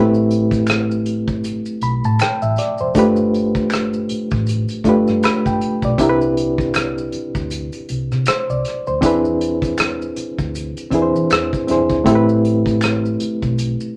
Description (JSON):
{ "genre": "R&B, neo-soul", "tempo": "79 BPM", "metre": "4/4", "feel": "swing 59% on 16ths", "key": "A minor", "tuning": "A4 = 439 Hz", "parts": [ { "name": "reed electric piano", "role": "accompaniment", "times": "0.0-14.0 s", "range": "A3 to B5", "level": "-19 LUFS", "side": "equal", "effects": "fast tremolo" }, { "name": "hollow-body short-scale fingered electric bass", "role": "bass", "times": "0.0-13.8 s", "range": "F1 to E3", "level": "-26 LUFS", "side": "equal", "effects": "none" }, { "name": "maracas and finger snaps", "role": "percussion", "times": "0.1-13.9 s", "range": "none", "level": "-35 LUFS", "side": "equal", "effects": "none" }, { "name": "unplugged drum kit", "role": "drums", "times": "0.3-13.8 s", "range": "hi-hat, kick drum, rim click", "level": "-24 LUFS", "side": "equal", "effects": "none" } ], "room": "moderate club reverb, RT60 0.7 s", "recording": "none", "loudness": "-18 LUFS", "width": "mono", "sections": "0.0-14.0 A section", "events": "none", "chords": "0.0 Am9; 2.9 G7; 6.0 Cmaj9; 9.0 E7b13; 12.1 Am9" }